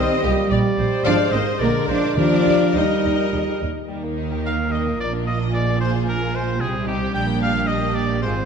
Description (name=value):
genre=quick classical-period movement for symphony orchestra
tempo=110 BPM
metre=3/4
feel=rubato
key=Eb major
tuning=A4 = 440 Hz
part: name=rich studio violin section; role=melody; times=0.0-8.3 s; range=G4 to G5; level=-31 LUFS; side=left 8 dB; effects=none
part: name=bright oboe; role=second line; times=0.0-8.5 s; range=G4 to G5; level=-27 LUFS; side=right 1 dB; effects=none
part: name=mellow hollow concert flute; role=second line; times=0.0-3.6 s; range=G4 to Eb5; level=-28 LUFS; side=left 1 dB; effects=none
part: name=warm studio violin section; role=second line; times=0.0-8.5 s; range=G3 to Eb5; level=-30 LUFS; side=left 4 dB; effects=none
part: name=mellow bassoon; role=accompaniment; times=0.0-3.6 s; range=G3 to Ab3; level=-26 LUFS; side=right 2 dB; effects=none
part: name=rich studio viola section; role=accompaniment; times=0.0-8.5 s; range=G3 to Eb5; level=-28 LUFS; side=equal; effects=none
part: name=warm French horn section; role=sustained chords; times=0.0-3.6 s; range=Bb2 to G3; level=-23 LUFS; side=left 5 dB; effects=none
part: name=clear studio double bass section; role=bass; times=0.0-8.5 s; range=Ab1 to Eb2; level=-25 LUFS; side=right 4 dB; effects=none
part: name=warm studio cello section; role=bass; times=0.0-8.5 s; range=Ab2 to Eb4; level=-25 LUFS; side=right 4 dB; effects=none
part: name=timpani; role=percussion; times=2.2-3.0 s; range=Eb3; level=-27 LUFS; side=right 1 dB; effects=none
room=moderate concert hall reverb, RT60 2.4 s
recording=dark, warm production, nothing above 10.6 kHz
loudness=-18 LUFS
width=side -6 dB against mid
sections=0.0-3.9 A section; 3.9-8.5 B section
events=none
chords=0.0 Cm; 0.5 Gm; 1.1 Fm; 1.6 Bb7; 2.2 Eb; 5.0 Bb; 6.6 Cm; 7.1 Gm/Bb